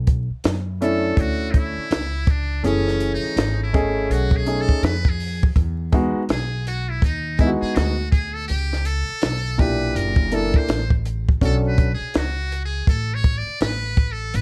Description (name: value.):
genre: hip hop, jazz-hop.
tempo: 82 BPM.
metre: 4/4.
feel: swing 61% on 16ths.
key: B dorian.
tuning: A4 = 440 Hz.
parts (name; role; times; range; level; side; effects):
upright bass; bass; 0.0-14.4 s; F#1 to F#2; -27 LUFS; equal; none.
compact cocktail drum kit; drums; 0.1-14.4 s; hi-hat, kick drum, snare drum; -22 LUFS; equal; none.
trumpet with metal mute; melody; 0.8-14.4 s; C#4 to D5; -30 LUFS; equal; plate reverb.
warm upright piano; accompaniment; 0.8-11.9 s; A#2 to D#5; -25 LUFS; equal; plate reverb.
room: light reverb.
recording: dark, warm production, vinyl crackle.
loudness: -21 LUFS.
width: mono.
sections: 0.0-14.4 A section.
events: muted trumpet solo 0.0-14.4.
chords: 0.0 Bm11 (rootless); 2.6 F#m9; 4.1 B13; 5.6 Emaj9; 8.5 C#m7b5; 10.0 F#7alt; 11.4 Bm9.